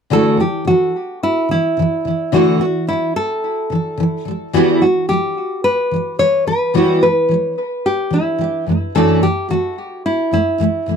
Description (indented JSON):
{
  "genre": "acoustic pop",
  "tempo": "109 BPM",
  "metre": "4/4",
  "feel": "straight",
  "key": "D major",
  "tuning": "A4 = 439 Hz",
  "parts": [
    { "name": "nylon-string guitar", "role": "melody", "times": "0.1-11.0 s", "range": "E4 to C#5", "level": "-17 LUFS", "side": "equal", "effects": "tape echo" },
    { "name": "picked steel-string acoustic guitar", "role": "accompaniment", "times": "0.1-11.0 s", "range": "F#2 to F#4", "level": "-16 LUFS", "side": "equal", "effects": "double-tracked left and right" }
  ],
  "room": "moderate booth ambience, RT60 0.2 s",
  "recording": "dry, close 1970s-style studio recording",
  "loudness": "-14 LUFS",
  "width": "side -7 dB against mid",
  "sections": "0.1-11.0 A section",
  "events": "none",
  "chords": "0.1 Dadd9; 4.3 Emadd9; 8.7 Dadd9/F# (rootless)",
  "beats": "| 0.12 0.67 1.22 1.77 | 2.33 2.88 3.43 3.98 | 4.54 5.09 5.64 6.19 | 6.74 7.30 7.85 8.40 | 8.95 9.50 10.05 10.60"
}